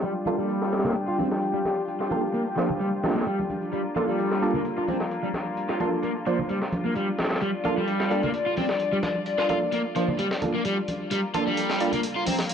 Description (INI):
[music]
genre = breakbeat, breaks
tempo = 130 BPM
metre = 4/4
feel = straight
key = G minor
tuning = A4 = 441 Hz
[part]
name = dark studio string section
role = sustained chords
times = 0.0-12.5 s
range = G3 to D5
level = -29 LUFS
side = left 2 dB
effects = low-pass filter
[part]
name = overdriven semi-hollow guitar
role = riff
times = 0.0-12.3 s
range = F3 to F4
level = -28 LUFS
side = equal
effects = vintage 12-bit sampler grit, digital delay
[part]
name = breakbeat sampler-style drum kit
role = drums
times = 0.0-12.5 s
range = hi-hat, snare drum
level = -31 LUFS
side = equal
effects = high-pass filter on hats, high-pass filter on snare
[part]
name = orchestra-hit-like synth stab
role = stabs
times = 0.3-11.9 s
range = Bb3 to C5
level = -29 LUFS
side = right 2 dB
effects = built-in reverb, digital delay
[part]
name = congas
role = percussion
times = 0.3-12.4 s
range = none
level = -34 LUFS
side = equal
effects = none
[sound]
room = moderate plate reverb, RT60 2.1 s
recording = low-pass filter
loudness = -23 LUFS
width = side -8 dB against mid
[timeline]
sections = 0.0-12.5 A section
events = filter sweep on overdriven electric guitar 0.0-12.5; filter sweep on string section 0.0-12.5; filter sweep 0.0-12.5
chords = 0.0 Gm7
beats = | 0.04 0.50 0.96 1.42 | 1.88 2.35 2.81 3.27 | 3.73 4.19 4.65 5.11 | 5.58 6.04 6.50 6.96 | 7.42 7.88 8.35 8.81 | 9.27 9.73 10.19 10.65 | 11.11 11.58 12.04 12.50